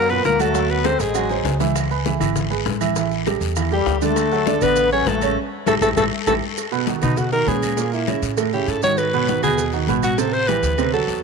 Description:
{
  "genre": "Afro-Cuban jazz",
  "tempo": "199 BPM",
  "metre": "4/4",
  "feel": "straight",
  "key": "unclear",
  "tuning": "A4 = 440 Hz",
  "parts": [
    { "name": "warm alto saxophone", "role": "melody", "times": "0.0-1.6, 3.7-11.2 s", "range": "D#4 to C#5", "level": "-22 LUFS", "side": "equal", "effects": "none" },
    { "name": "trombone with plunger mute", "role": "second line", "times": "0.0-1.6, 3.7-6.3 s", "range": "G3 to C#4", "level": "-24 LUFS", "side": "left 12 dB", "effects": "none" },
    { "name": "warm baby grand piano", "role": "accompaniment", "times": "0.0-11.2 s", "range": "A2 to F#5", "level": "-22 LUFS", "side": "right 14 dB", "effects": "none" },
    { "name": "upright bass", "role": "bass", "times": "0.0-11.2 s", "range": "G#1 to B2", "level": "-26 LUFS", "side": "equal", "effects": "none" },
    { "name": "congas", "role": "percussion", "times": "0.1-11.2 s", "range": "none", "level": "-28 LUFS", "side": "left 14 dB", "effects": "none" },
    { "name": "maracas", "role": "percussion", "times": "0.1-11.2 s", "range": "none", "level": "-36 LUFS", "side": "right 16 dB", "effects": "none" },
    { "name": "bongos and cowbell", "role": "percussion", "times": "0.2-11.2 s", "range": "none", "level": "-31 LUFS", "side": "left 15 dB", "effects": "none" },
    { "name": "guiro", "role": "percussion", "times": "0.2-11.2 s", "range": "none", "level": "-34 LUFS", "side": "left 14 dB", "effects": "none" },
    { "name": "claves", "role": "percussion", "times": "0.4-10.9 s", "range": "none", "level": "-34 LUFS", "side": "right 14 dB", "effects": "none" }
  ],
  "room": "light reverb, small room ambience",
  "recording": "1960s-style stereo with parts hard left and right",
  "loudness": "-17 LUFS",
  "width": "side -5 dB against mid",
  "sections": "0.0-6.6 A section; 6.6-11.2 B section",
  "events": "drum fill 0.9-1.8, 6.1-6.6; band accent 5.4-6.6; alto saxophone solo 6.6-11.2",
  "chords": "0.0 B5; 0.5 D7#11; 1.8 C#m7; 3.0 A5; 4.2 Dmaj7; 5.4 A5; 6.6 B69; 7.8 A#dim; 8.4 A; 9.0 G#m7; 10.2 Am7",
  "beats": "0.25 | 0.55 0.85 1.15 1.45 | 1.76 2.06 2.36 2.66 | 2.96 3.26 3.56 3.87 | 4.17 4.47 4.77 5.07 | 5.37 5.67 5.97 6.27 | 6.58 6.88 7.18 7.48 | 7.78 8.08 8.38 8.68 | 8.98 9.28 9.58 9.88 | 10.18 10.48 10.78 11.08"
}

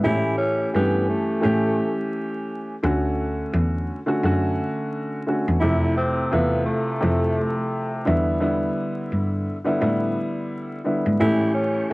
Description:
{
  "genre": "hip hop",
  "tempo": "86 BPM",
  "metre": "4/4",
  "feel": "swing 56% on 16ths",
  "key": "unclear",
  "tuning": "A4 = 440 Hz",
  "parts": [
    { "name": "growling tenor saxophone", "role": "melody", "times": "0.0-11.9 s", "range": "A3 to E4", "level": "-25 LUFS", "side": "equal", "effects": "high-pass filter, low-pass filter, analog delay" },
    { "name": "dark upright piano", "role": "accompaniment", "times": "0.0-11.9 s", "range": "C3 to G4", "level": "-23 LUFS", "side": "equal", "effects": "cassette tape, high-pass filter, low-pass filter" },
    { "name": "bright cello", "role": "bass", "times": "0.0-11.9 s", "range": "D2 to A2", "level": "-24 LUFS", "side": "equal", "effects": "none" },
    { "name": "tonewheel organ", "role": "sustained chords", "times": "11.2-11.9 s", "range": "A4 to C#6", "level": "-37 LUFS", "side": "right 1 dB", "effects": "chorus vibrato, fast rotary speaker, high-pass filter, low-pass filter, cassette tape" }
  ],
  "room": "light reverb",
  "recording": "home recording on cassette, vinyl crackle, nothing above 10.4 kHz",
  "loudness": "-20 LUFS",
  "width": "side -22 dB against mid",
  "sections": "0.0-11.9 A section",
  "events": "none",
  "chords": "0.0 A7; 2.8 Dmaj7; 5.6 Fmaj7; 8.1 Em7; 11.2 A7",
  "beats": "| 0.04 0.74 1.44 2.14 | 2.84 3.53 4.23 4.93 | 5.63 6.32 7.02 7.72 | 8.42 9.12 9.81 10.51 | 11.21 11.90"
}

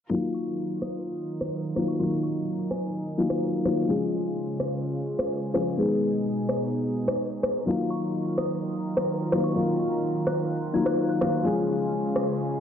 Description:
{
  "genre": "EDM, festival progressive house",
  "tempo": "127 BPM",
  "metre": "4/4",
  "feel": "straight",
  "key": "Eb minor",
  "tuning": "A4 = 440 Hz",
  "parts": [
    { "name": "warm concert grand piano", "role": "accompaniment", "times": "0.1-12.6 s", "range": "Eb3 to Ab4", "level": "-27 LUFS", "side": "left 3 dB", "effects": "tape echo" },
    { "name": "warm studio string section", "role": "sustained chords", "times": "0.1-12.6 s", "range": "Cb3 to Bb4", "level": "-30 LUFS", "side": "right 2 dB", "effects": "none" },
    { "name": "glassy synth bell", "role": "melody", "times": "0.3-3.2, 7.9-11.5 s", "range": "Ab5 to Ab6", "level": "-47 LUFS", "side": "right 3 dB", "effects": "chorus, tape echo" },
    { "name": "electronic rim click", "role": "drums", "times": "0.8-12.3 s", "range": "none", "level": "-29 LUFS", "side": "equal", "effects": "none" }
  ],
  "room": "moderate lush hall reverb, RT60 1.9 s, small room reverb",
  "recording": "low-pass filter",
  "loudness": "-24 LUFS",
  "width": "side -8 dB against mid",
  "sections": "0.1-12.6 A section",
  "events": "filter sweep 0.1-12.6",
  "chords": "0.1 Ebmadd9; 3.9 Db; 5.8 Abm/Cb; 7.7 Ebmadd9; 11.4 Db",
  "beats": "| 0.11 0.58 1.05 1.53 | 2.00 2.47 2.94 3.42 | 3.89 4.36 4.83 5.31 | 5.78 6.25 6.72 7.20 | 7.67 8.14 8.61 9.09 | 9.56 10.03 10.50 10.98 | 11.45 11.92 12.39"
}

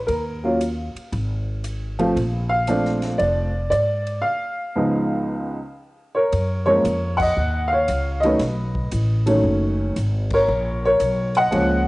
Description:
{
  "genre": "jazz piano trio",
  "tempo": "115 BPM",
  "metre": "4/4",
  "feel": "swing 67% on 8ths",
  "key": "F# major from 6.3 s",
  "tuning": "A4 = 440 Hz",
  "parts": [
    { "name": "upright bass", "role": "bass", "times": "0.0-11.9 s", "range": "F1 to Ab2", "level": "-24 LUFS", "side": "equal", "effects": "none" },
    { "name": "warm upright piano", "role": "melody", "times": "0.1-11.9 s", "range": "Db2 to F#5", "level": "-20 LUFS", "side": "equal", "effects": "cassette tape" },
    { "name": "swinging big-band drum kit", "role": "drums", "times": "0.1-11.7 s", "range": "crash cymbal, hi-hat, kick drum, ride cymbal, snare drum", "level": "-35 LUFS", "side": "equal", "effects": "cassette tape" }
  ],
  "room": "moderate spring reverb, RT60 1.6 s, small room ambience",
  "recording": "home recording on cassette, nothing above 10.9 kHz",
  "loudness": "-19 LUFS",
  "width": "side -20 dB against mid",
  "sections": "0.0-6.3 A section; 6.3-11.9 B section",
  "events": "break 4.2-6.3; band accent 7.1, 10.2",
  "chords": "0.1 Eb5; 1.1 N.C.; 2.2 Bbmaj7; 4.2 Db7; 6.3 F#maj7; 8.4 B9; 10.5 A#m7",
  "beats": "| 0.08 0.60 1.12 1.64 | 2.16 2.68 3.20 3.72 | 4.24 4.76 5.28 5.80 | 6.32 6.84 7.36 7.88 | 8.40 8.92 9.44 9.96 | 10.48 11.00 11.52"
}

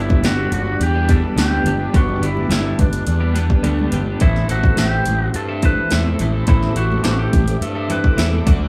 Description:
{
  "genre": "psychedelic rock",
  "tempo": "106 BPM",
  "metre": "4/4",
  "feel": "straight",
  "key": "A dorian",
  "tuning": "A4 = 441 Hz",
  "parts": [
    { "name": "clean lap steel guitar", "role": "melody", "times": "0.0-8.2 s", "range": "D4 to B4", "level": "-26 LUFS", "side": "equal", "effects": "none" },
    { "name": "string machine, cellos", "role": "sustained chords", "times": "0.0-8.7 s", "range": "G4 to D6", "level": "-32 LUFS", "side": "equal", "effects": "phaser, ensemble chorus" },
    { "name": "twelve-string electric guitar", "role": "riff", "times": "0.0-8.7 s", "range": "G2 to A4", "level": "-26 LUFS", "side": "equal", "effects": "tremolo" },
    { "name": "fuzz picked electric bass", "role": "bass", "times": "0.0-8.7 s", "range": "G1 to G2", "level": "-22 LUFS", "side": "equal", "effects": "overdrive" },
    { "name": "deep house drum kit", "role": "drums", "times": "0.1-8.6 s", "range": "hi-hat, kick drum, snare drum", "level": "-20 LUFS", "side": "equal", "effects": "overdrive" },
    { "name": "congas", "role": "percussion", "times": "0.1-8.6 s", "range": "none", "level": "-32 LUFS", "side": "equal", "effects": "none" }
  ],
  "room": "wet studio reverb, RT60 0.5 s",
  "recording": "band playing live in one room",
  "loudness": "-17 LUFS",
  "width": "mono",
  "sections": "0.0-8.7 A section",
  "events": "kick and snare drop out 3.6-4.2",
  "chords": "0.0 G; 4.2 Am",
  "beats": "0.24 0.81 1.38 | 1.94 2.51 3.08 3.65 | 4.21 4.78 5.35 5.91 | 6.48 7.05 7.62 8.18"
}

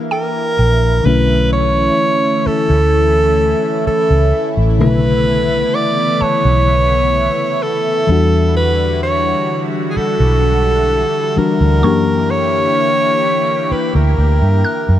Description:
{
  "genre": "R&B",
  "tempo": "64 BPM",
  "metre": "4/4",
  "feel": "straight",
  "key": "B minor",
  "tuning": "A4 = 440 Hz",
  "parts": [
    { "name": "mellow FM electric piano", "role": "accompaniment", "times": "0.0-15.0 s", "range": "C#3 to G4", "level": "-20 LUFS", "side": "left 6 dB", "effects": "chorus" },
    { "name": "lush unison pad", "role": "sustained chords", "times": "0.0-15.0 s", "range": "D3 to G4", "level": "-21 LUFS", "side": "right 1 dB", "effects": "chorus, phaser" },
    { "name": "bright alto saxophone", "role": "melody", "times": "0.1-15.0 s", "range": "G#4 to D5", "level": "-16 LUFS", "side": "right 1 dB", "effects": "none" },
    { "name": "mallet-like synth pluck", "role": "texture", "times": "0.1-15.0 s", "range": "G5 to F#6", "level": "-25 LUFS", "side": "right 2 dB", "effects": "chorus, digital delay" },
    { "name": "vintage muted fingered electric bass", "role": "bass", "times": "0.6-15.0 s", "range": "A1 to G2", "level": "-15 LUFS", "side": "equal", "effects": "none" }
  ],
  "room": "light reverb, digital ambience",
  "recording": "none",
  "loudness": "-12 LUFS",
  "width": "side -12 dB against mid",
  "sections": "0.0-15.0 A section",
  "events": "none",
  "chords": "0.0 F#7b9b13 (rootless); 1.1 Bm11; 8.1 Em9; 11.8 F#7b9b13",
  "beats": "0.11 | 1.05 1.99 2.93 3.86 | 4.80 5.74 6.68 7.61 | 8.55 9.49 10.43 11.36 | 12.30 13.24 14.18"
}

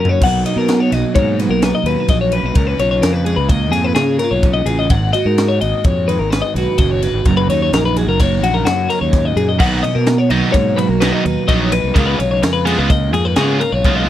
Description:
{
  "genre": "math rock and midwest emo",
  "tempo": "128 BPM",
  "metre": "5/4",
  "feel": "straight",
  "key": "unclear",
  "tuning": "A4 = 440 Hz",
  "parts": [
    { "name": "twelve-string electric guitar", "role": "accompaniment", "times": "0.0-14.1 s", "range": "F#2 to C#5", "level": "-20 LUFS", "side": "right 6 dB", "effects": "wide subtle chorus" },
    { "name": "twelve-string electric guitar", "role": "arpeggios", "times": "0.0-14.1 s", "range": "F#4 to F#5", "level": "-18 LUFS", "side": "left 6 dB", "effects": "none" },
    { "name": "fuzz fingered electric bass", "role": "bass", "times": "0.0-14.1 s", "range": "F#1 to C#3", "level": "-18 LUFS", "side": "equal", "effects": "overdrive" },
    { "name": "crisp fusion drum kit", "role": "drums", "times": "0.1-14.0 s", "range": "crash cymbal, kick drum, ride cymbal, snare drum, toms", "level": "-19 LUFS", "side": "equal", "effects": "none" },
    { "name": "cranked stack guitar", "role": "riff", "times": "9.6-14.1 s", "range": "C#3 to E#4", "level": "-19 LUFS", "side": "right 1 dB", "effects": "overdrive" }
  ],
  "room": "little or no reverb",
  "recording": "none",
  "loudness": "-13 LUFS",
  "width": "side -12 dB against mid",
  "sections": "0.2-14.1 A section",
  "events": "drum fill 0.0",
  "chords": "0.2 Bmaj7; 2.6 C#13; 4.9 G#m9; 7.3 F#6; 9.6 Bmaj7; 12.0 C#13",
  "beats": "| 0.21 0.68 1.15 1.62 2.09 | 2.56 3.03 3.50 3.97 4.43 | 4.90 5.37 5.84 6.31 6.78 | 7.25 7.72 8.19 8.66 9.13 | 9.60 10.07 10.54 11.01 11.48 | 11.95 12.42 12.89 13.36 13.83"
}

